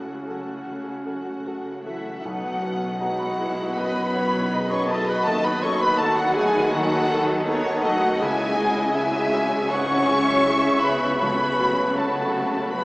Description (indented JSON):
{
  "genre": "cinematic, emotional film score for orchestra",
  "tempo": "80 BPM",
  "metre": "4/4",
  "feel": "uneven beats, rubato",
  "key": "unclear",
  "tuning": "A4 = 442 Hz",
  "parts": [
    { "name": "dark symphonic violin section", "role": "melody", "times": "0.0-12.8 s", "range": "E5 to C#6", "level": "-26 LUFS", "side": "left 1 dB", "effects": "none" },
    { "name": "mellow clarinet", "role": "second line", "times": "0.0-12.8 s", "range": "C#4 to C#5", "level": "-29 LUFS", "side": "right 1 dB", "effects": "none" },
    { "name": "clear concert grand piano", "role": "accompaniment", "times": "0.0-12.8 s", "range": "B1 to B4", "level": "-30 LUFS", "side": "equal", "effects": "none" },
    { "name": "warm symphonic viola section", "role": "accompaniment", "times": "0.0-12.8 s", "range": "D#3 to G#4", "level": "-32 LUFS", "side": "equal", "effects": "none" },
    { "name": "concert harp", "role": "arpeggios", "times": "0.0-12.8 s", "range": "B2 to B5", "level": "-32 LUFS", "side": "equal", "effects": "none" },
    { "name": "warm symphonic cello section", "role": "bass", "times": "0.0-12.8 s", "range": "B2 to D#3", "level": "-31 LUFS", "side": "equal", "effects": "none" },
    { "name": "small flute group", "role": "second line", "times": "1.8-12.8 s", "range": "E5 to C#6", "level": "-29 LUFS", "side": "left 1 dB", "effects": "none" },
    { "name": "mellow French horn section", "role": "sustained chords", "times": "1.8-12.8 s", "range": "E3 to G#4", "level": "-28 LUFS", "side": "equal", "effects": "none" },
    { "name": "clear symphonic double bass section", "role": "bass", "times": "2.2-12.8 s", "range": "B1 to D#2", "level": "-35 LUFS", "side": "equal", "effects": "none" },
    { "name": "warm symphonic violin section", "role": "second line", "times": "3.8-12.8 s", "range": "F#4 to F#5", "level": "-29 LUFS", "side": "equal", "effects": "none" },
    { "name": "timpani", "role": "percussion", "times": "11.2-12.3 s", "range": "none", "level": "barely audible", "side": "none", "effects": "none" }
  ],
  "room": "wet huge ambient reverb, RT60 7.5 s",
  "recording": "in a vast, echoing space, small speaker sound",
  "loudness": "-20 LUFS",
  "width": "side -21 dB against mid",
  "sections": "0.0-2.2 A section; 2.2-12.8 A section",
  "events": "none",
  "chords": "0.0 F#m/C#; 2.2 B; 5.3 D#dim; 8.2 C#m; 11.2 F#m/C#"
}